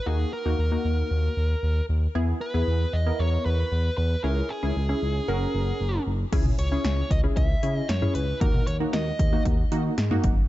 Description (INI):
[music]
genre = synth-pop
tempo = 115 BPM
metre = 4/4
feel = straight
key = unclear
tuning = A4 = 440 Hz
[part]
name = dark smooth lead guitar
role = melody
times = 0.0-9.4 s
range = G#4 to E5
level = -31 LUFS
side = equal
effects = overdrive, ping-pong delay
[part]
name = funky polysynth comp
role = accompaniment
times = 0.1-10.3 s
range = A#3 to A#4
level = -30 LUFS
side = left 1 dB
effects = chorus
[part]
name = smooth synth bass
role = bass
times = 0.1-10.4 s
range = F#1 to D#3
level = -25 LUFS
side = equal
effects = none
[part]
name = house drum kit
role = drums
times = 6.3-10.4 s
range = crash cymbal, hi-hat, kick drum, snare drum, toms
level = -24 LUFS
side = equal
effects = none
[sound]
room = light reverb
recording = dark, warm production, nothing above 7.8 kHz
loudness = -22 LUFS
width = side -15 dB against mid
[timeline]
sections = 0.0-6.3 A section; 6.3-10.5 B section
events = none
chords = 0.1 D#m; 2.2 E; 4.2 C#m; 5.3 F#; 6.3 C#m; 8.4 D#m